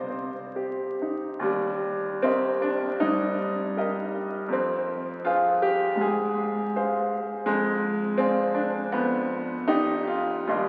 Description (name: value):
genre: classical, romantic character piece for solo piano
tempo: 63-85 BPM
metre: 2/4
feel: rubato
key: Eb major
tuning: A4 = 440 Hz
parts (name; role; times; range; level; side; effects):
- bright grand piano; solo; 0.0-10.7 s; Eb2 to C6; -26 LUFS; equal; none
room: wet church reverb, RT60 3.7 s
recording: very old 78 rpm record, vinyl crackle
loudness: -26 LUFS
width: mono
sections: 0.0-1.4 A section; 1.4-10.7 B section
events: none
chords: 0.0 Cm; 1.4 Eb; 3.0 Eb/G; 4.5 Fm; 6.0 Fm/Ab; 7.5 Ddim/F; 8.9 G7/F